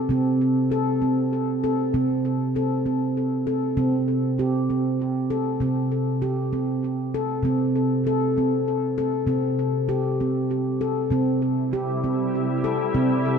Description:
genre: world meditative.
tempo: 98 BPM.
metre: 3/4.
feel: straight.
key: C major pentatonic.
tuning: A4 = 438 Hz.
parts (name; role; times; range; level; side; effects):
handpan; arpeggios; 0.0-13.4 s; C3 to A4; -21 LUFS; equal; tape echo.
shimmering ambient pad; sustained chords; 11.6-13.4 s; C3 to E4; -28 LUFS; left 2 dB; chorus, built-in reverb.
room: wet lush hall reverb, RT60 2.6 s.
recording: dark, warm production.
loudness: -21 LUFS.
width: side -6 dB against mid.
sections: 0.0-11.1 A section; 11.1-13.4 B section.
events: none.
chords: 0.1 Am/C; 3.8 C5; 7.4 Am/C; 9.3 C5; 11.1 C.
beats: | 0.10 0.71 1.32 | 1.94 2.55 3.16 | 3.77 4.38 5.00 | 5.61 6.22 6.83 | 7.44 8.06 8.67 | 9.28 9.89 10.50 | 11.11 11.72 12.34 | 12.95.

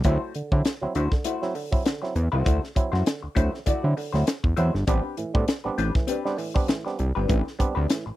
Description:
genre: funk.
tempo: 99 BPM.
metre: 4/4.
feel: swing 56% on 16ths.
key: unclear.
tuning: A4 = 440 Hz.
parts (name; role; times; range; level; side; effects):
vintage hollow-body jazz guitar; accompaniment; 0.0-8.1 s; A3 to D5; -30 LUFS; left 4 dB; wah.
muted clav; stabs; 0.0-8.1 s; A2 to E4; -30 LUFS; right 3 dB; auto-wah, slapback echo.
fat analog bass; bass; 0.0-8.1 s; G1 to D3; -23 LUFS; equal; none.
tight funk drum kit; drums; 0.0-8.1 s; hi-hat, kick drum, snare drum; -24 LUFS; equal; none.
room: little or no reverb.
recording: dry, close 1970s-style studio recording.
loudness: -22 LUFS.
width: side -15 dB against mid.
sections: 0.0-8.2 A section.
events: none.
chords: 0.1 D9; 4.9 Am11.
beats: | 0.05 0.65 1.26 1.86 | 2.46 3.07 3.67 4.27 | 4.88 5.48 6.08 6.69 | 7.29 7.90.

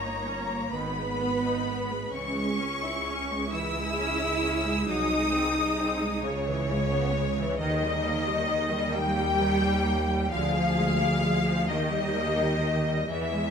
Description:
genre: classical, slow romantic movement for string orchestra.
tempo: 44 BPM (dotted quarters).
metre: 6/8.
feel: rubato.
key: unclear.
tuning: A4 = 439 Hz.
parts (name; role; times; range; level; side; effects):
rich studio violin section; melody; 0.0-13.5 s; C#5 to E6; -31 LUFS; left 5 dB; none.
rich studio violin section; second line; 0.0-13.5 s; C#5 to E6; -33 LUFS; equal; none.
clear studio viola section; accompaniment; 0.0-13.5 s; C#3 to C#5; -31 LUFS; right 1 dB; none.
clear chamber double bass section; bass; 0.0-13.5 s; G1 to E2; -32 LUFS; right 1 dB; none.
rich symphonic cello section; bass; 0.0-13.5 s; C#3 to E4; -30 LUFS; right 2 dB; none.
room: moderate scoring stage reverb, RT60 1.9 s.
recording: none.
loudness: -24 LUFS.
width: side -7 dB against mid.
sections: 0.0-13.5 A section.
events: none.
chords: 0.0 D#7/G; 0.7 G#m; 2.1 C#m; 4.9 G#7/B#; 6.2 C#m7; 7.6 D#; 10.3 A#7/D; 11.7 D#.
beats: 0.74 | 2.13 3.53 | 4.89 6.25 | 7.60 8.95 | 10.31 11.69 | 13.09.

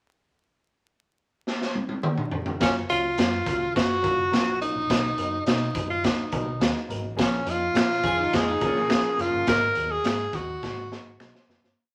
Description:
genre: uptempo 1960s-style soul.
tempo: 105 BPM.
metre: 4/4.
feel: straight.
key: F# major.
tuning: A4 = 440 Hz.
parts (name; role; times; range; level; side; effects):
raw garage drum kit; drums; 1.5-11.8 s; hi-hat, kick drum, snare drum, toms; -28 LUFS; equal; none.
breathy tenor saxophone; melody; 2.6-11.5 s; C#4 to A#4; -28 LUFS; equal; none.
dark upright piano; accompaniment; 2.6-11.6 s; E#3 to C#5; -38 LUFS; equal; none.
fingered electric bass; bass; 2.6-11.7 s; F#1 to B2; -38 LUFS; equal; none.
finger snaps; percussion; 7.8-11.3 s; none; -37 LUFS; equal; none.
electric guitar through a small old amp; riff; 8.0-9.4 s; C#3 to G#4; -33 LUFS; equal; none.
room: moderate large studio reverb, RT60 1.0 s.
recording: vinyl crackle.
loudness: -25 LUFS.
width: mono.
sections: 0.3-2.6 pickup bar; 2.6-11.8 verse.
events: drum fill 1.5-2.6, 10.6-11.8; fade-out 9.5-11.8.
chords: 0.3 N.C.; 2.6 F#maj7; 4.9 Bmaj7; 7.2 A#m7; 9.5 G#m7.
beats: | 0.31 0.89 1.46 2.04 | 2.61 3.18 3.76 4.33 | 4.90 5.47 6.05 6.62 | 7.19 7.76 8.33 8.91 | 9.48 10.05 10.62 11.20.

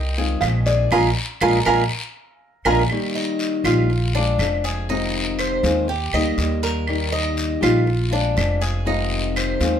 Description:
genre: latin, Cuban son and guajira.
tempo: 121 BPM.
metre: 4/4.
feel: straight.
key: Eb major.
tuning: A4 = 441 Hz.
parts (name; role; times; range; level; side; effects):
felt-muted upright piano; melody; 0.0-2.8 s; D5 to Bb5; -22 LUFS; right 1 dB; plate reverb.
Cuban tres; arpeggios; 0.0-9.8 s; D4 to Eb5; -23 LUFS; right 1 dB; none.
upright bass; bass; 0.0-9.8 s; F1 to Eb2; -22 LUFS; equal; none.
flamenco guitar; accompaniment; 0.2-9.8 s; C3 to G4; -24 LUFS; left 3 dB; none.
claves; percussion; 0.4-9.6 s; none; -30 LUFS; right 1 dB; none.
guiro; percussion; 0.4-9.8 s; none; -30 LUFS; left 4 dB; none.
room: light reverb.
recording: none.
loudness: -18 LUFS.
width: side -8 dB against mid.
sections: 0.0-2.9 A section; 2.9-9.8 B section.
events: band accent 0.9-2.9.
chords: 0.0 Fm7; 0.9 Bb7; 2.9 Eb; 3.9 Bb7; 4.9 Fm7; 5.9 Eb; 7.9 Bb7; 8.9 Fm7.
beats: 0.42 | 0.92 1.42 1.92 2.41 | 2.91 3.41 3.90 4.40 | 4.89 5.39 5.89 6.38 | 6.88 7.38 7.87 8.37 | 8.86 9.36.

